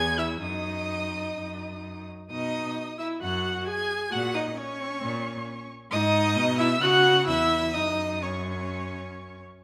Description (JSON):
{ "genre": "quick classical-period movement for string quartet", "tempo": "131 BPM", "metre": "4/4", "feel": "uneven beats, rubato", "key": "unclear", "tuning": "A4 = 440 Hz", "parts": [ { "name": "dark violin", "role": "melody", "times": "0.0-9.4 s", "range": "C#6 to G#6", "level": "-32 LUFS", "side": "equal", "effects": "none" }, { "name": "rich violin", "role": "second line", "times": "0.0-9.4 s", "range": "C#5 to G#5", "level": "-34 LUFS", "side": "equal", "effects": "none" }, { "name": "warm viola", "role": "accompaniment", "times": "0.0-9.4 s", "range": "C#4 to G#4", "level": "-31 LUFS", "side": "equal", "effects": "none" }, { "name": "rich cello", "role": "bass", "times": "0.0-9.4 s", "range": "E2 to C#3", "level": "-34 LUFS", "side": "equal", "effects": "none" } ], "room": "moderate scoring stage reverb, RT60 1.7 s", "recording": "faint mains hum", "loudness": "-26 LUFS", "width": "mono", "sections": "0.0-9.6 A section", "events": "none", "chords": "0.4 D#m/F#; 2.3 B; 4.1 A#m; 5.9 G#m; 6.8 C#m; 7.8 F#5" }